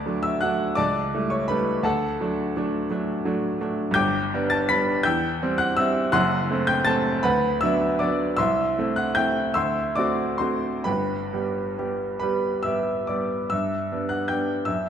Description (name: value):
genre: classical, romantic character piece for solo piano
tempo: 42-58 BPM (dotted quarters)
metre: 6/8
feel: rubato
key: G major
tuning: A4 = 440 Hz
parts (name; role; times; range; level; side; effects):
- clear baby grand piano; solo; 0.0-14.9 s; F#1 to B6; -21 LUFS; equal; none
room: wet scoring stage reverb, RT60 1.7 s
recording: none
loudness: -21 LUFS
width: side -8 dB against mid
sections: 0.0-13.5 A section; 13.5-14.9 B section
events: none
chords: 0.0 D; 0.8 A7/C#; 1.8 D; 4.0 G; 5.1 C/E; 6.1 F#dim; 7.3 Bm/D; 8.4 Am/C; 9.6 D9; 10.9 G